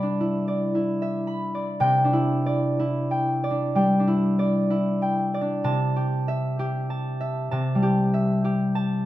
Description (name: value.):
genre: classical, solo harp piece.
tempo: 55-65 BPM.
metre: 4/4.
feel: rubato.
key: C major.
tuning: A4 = 440 Hz.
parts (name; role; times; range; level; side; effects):
concert harp; solo; 0.0-9.1 s; C3 to C6; -21 LUFS; equal; none.
room: moderate recital hall reverb, RT60 1.7 s.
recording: close, detailed microphones.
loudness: -21 LUFS.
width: side -14 dB against mid.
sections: 0.0-1.8 A section; 1.8-9.1 A section.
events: none.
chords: 0.0 Cmaj9; 1.8 Cadd9; 5.6 Am7/C.